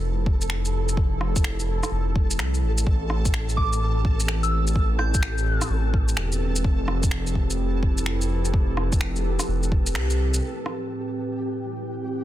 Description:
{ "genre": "future garage", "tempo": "127 BPM", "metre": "4/4", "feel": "swing 64% on 16ths", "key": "A minor", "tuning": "A4 = 439 Hz", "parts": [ { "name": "warbly tape-like pad", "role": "sustained chords", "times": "0.0-12.2 s", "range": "A2 to B4", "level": "-31 LUFS", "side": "right 1 dB", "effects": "chorus, built-in reverb, sidechain pumping" }, { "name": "dark detuned saw bass", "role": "bass", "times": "0.0-10.4 s", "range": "E1 to C2", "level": "-24 LUFS", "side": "equal", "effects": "sidechain pumping" }, { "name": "flickering grainy texture", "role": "texture", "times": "0.0-12.2 s", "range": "G4 to A4", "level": "-35 LUFS", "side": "equal", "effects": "built-in reverb" }, { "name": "electronic kick drum", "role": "drums", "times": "0.3-9.8 s", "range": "none", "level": "-23 LUFS", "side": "equal", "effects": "none" }, { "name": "electronic shaker, finger snaps and rim click", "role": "drums", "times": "0.4-10.8 s", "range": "none", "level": "-30 LUFS", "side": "equal", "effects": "soft clipping on snare" }, { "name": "soft synth bell", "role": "melody", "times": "3.6-5.7 s", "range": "D6 to G6", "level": "-30 LUFS", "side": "equal", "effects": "chorus, phaser, tape echo" } ], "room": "light reverb", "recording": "dense, heavily limited modern master", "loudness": "-21 LUFS", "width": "side -13 dB against mid", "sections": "0.0-10.4 A section; 10.4-12.2 B section", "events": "band accent 9.9", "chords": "0.0 Fmaj9#11; 2.9 Am9; 6.6 Fmaj9#11; 10.4 Am9" }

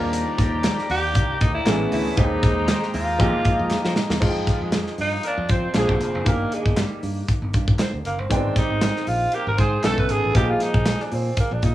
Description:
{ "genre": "polished 1980s jazz-funk pop", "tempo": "117 BPM", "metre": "4/4", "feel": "swing 54% on 16ths", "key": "F dorian", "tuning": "A4 = 440 Hz", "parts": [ { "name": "clear grand piano", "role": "accompaniment", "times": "0.0-11.7 s", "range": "Eb3 to G5", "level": "-26 LUFS", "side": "left 1 dB", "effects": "wide subtle chorus, cassette tape" }, { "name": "chorused pulse-width pad", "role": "sustained chords", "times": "0.0-4.2 s", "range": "Ab3 to B5", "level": "-29 LUFS", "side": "equal", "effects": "cassette tape" }, { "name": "modern bright fingered electric bass", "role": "bass", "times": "0.0-11.7 s", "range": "F1 to F3", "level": "-26 LUFS", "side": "equal", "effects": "none" }, { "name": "modern studio drum kit", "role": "drums", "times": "0.1-11.7 s", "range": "crash cymbal, hi-hat, kick drum, snare drum", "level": "-23 LUFS", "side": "equal", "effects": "cassette tape" }, { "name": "group handclap", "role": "percussion", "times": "0.6-11.0 s", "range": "none", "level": "-37 LUFS", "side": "left 2 dB", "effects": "none" }, { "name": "raspy tenor saxophone", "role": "melody", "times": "0.9-11.7 s", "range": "G3 to B4", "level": "-25 LUFS", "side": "right 1 dB", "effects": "none" }, { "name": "mellow horn section", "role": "second line", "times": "4.5-10.0 s", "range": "F3 to C5", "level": "-30 LUFS", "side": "right 2 dB", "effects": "cassette tape" } ], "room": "light reverb", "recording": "home recording on cassette, small room ambience", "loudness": "-19 LUFS", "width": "side -14 dB against mid", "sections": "0.0-4.2 A section; 4.2-11.7 B section", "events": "drum fill 3.7-4.2; tenor saxophone solo 4.2-11.7", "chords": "0.0 Ebmaj7; 1.7 Amaj9; 2.2 Abmaj9/Eb; 3.2 Fm11; 4.2 Fm9; 5.8 Bb7; 6.3 Ebmaj7/G; 8.3 Abmaj7; 9.8 B9; 10.4 Bb7sus4" }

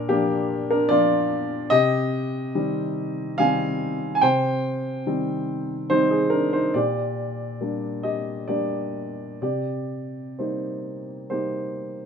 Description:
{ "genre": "neoclassical minimalist piano", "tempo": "62-74 BPM", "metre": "3/4", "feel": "rubato", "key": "C minor", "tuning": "A4 = 442 Hz", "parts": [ { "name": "dark baby grand piano", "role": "solo", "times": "0.0-12.1 s", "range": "Bb2 to Ab5", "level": "-22 LUFS", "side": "equal", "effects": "none" } ], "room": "moderate studio reverb, RT60 0.8 s", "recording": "minimal, uncompressed stereo recording", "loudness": "-22 LUFS", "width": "side -6 dB against mid", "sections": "0.0-12.1 A section", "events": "none", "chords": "0.0 Bb; 1.7 Cm; 6.7 Gm/Bb; 9.4 Cm7" }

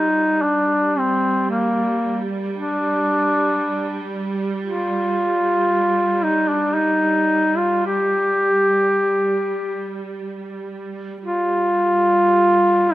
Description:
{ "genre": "caucasian folk, Caucasian lament", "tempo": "56 BPM", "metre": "3/4", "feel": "rubato", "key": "G minor", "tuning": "A4 = 441 Hz", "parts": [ { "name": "warm duduk", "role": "melody", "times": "0.0-12.9 s", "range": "Bb3 to G4", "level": "-17 LUFS", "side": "equal", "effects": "none" }, { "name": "rich symphonic string section", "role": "drone", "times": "0.0-12.9 s", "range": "G3", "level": "-26 LUFS", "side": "right 3 dB", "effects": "none" } ], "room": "light reverb, studio ambience", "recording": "rough home demo mix", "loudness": "-17 LUFS", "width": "side -16 dB against mid", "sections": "0.0-11.2 A section; 11.2-12.9 B section", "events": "none", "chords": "none" }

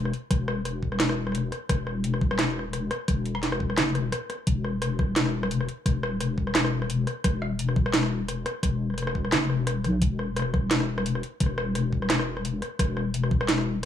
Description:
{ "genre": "half-time drum and bass", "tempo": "173 BPM", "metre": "4/4", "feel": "swing 55% on 16ths, half-time", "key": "unclear", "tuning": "A4 = 439 Hz", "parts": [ { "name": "deep soft wobble bass", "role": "bass", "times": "0.0-13.9 s", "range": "E1 to B1", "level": "-27 LUFS", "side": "left 2 dB", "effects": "chorus" }, { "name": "drum and bass drum kit", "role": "drums", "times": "0.1-13.9 s", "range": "hi-hat, rim click, snare drum", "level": "-28 LUFS", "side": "right 1 dB", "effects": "none" }, { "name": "electronic kick drum", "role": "drums", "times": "0.3-13.4 s", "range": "none", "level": "-25 LUFS", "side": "equal", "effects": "none" } ], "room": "little or no reverb", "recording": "none", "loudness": "-24 LUFS", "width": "side -10 dB against mid", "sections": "0.0-13.9 A section", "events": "none", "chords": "none" }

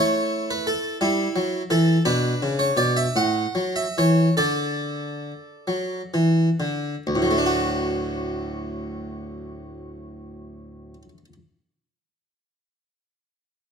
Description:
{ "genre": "classical, baroque-style suite movement for harpsichord", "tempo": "42-58 BPM (dotted quarters)", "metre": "6/8", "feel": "rubato", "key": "D major", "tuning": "A4 = 440 Hz", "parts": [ { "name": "harpsichord", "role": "solo", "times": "0.0-11.3 s", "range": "D2 to F#5", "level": "-21 LUFS", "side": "equal", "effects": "none" } ], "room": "moderate stone room reverb, RT60 1.0 s", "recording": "minimal, uncompressed stereo recording", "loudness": "-20 LUFS", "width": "side -6 dB against mid", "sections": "0.0-7.1 A section; 7.1-12.6 B section", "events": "slowing down 1.0-7.1", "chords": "0.0 A5; 2.1 Bm; 3.2 A5; 4.4 D" }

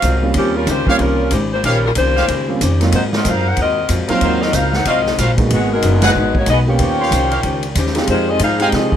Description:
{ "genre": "jazz, big band swing", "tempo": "186 BPM", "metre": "4/4", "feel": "swing 62% on 8ths", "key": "Eb mixolydian", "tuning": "A4 = 440 Hz", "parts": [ { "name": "archtop guitar, miked and amplified", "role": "accompaniment", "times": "0.0-8.9 s", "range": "Ab2 to C5", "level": "-23 LUFS", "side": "left 4 dB", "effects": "none" }, { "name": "bright trumpet section", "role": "stabs", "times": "0.0-8.7 s", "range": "Gb4 to C6", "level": "-20 LUFS", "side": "right 2 dB", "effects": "none" }, { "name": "upright bass", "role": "bass", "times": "0.0-9.0 s", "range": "Gb1 to C3", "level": "-18 LUFS", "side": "equal", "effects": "none" }, { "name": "swinging big-band drum kit", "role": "drums", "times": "0.0-9.0 s", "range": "hi-hat, kick drum, ride cymbal, snare drum", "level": "-21 LUFS", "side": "equal", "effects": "none" }, { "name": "warm grand piano", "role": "accompaniment", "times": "0.2-9.0 s", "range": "Gb3 to G4", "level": "-20 LUFS", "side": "right 3 dB", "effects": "none" }, { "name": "mellow saxophone section", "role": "melody", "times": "0.4-9.0 s", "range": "Eb3 to G5", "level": "-18 LUFS", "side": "left 2 dB", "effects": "none" } ], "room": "light reverb", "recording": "none", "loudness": "-13 LUFS", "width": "side -9 dB against mid", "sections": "0.0-9.0 A section", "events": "band accent 6.0", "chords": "0.4 Eb13; 2.9 Ab13; 5.5 Abm7; 6.8 Eb13; 8.1 Fm7" }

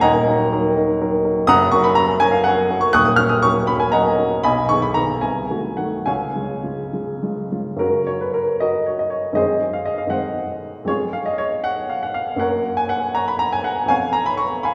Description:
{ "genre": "classical, romantic character piece for solo piano", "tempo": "68-84 BPM (dotted quarters)", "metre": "6/8", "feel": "rubato", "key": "F# major", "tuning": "A4 = 441 Hz", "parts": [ { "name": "warm upright piano", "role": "solo", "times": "0.0-14.7 s", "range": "Eb1 to F#6", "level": "-19 LUFS", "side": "equal", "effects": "none" } ], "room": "wet recital hall reverb, RT60 1.8 s", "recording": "recorded in a church or concert hall", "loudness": "-19 LUFS", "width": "mono", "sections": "0.0-7.8 A section; 7.8-14.7 B section", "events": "none", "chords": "0.0 Ebm; 1.5 F#; 2.9 D#m7; 4.4 G#m/B; 5.2 Cdim7; 6.1 C#; 7.8 F#; 9.4 G#7/F#; 10.9 C#/E#; 12.4 F#; 13.9 C#7/E#" }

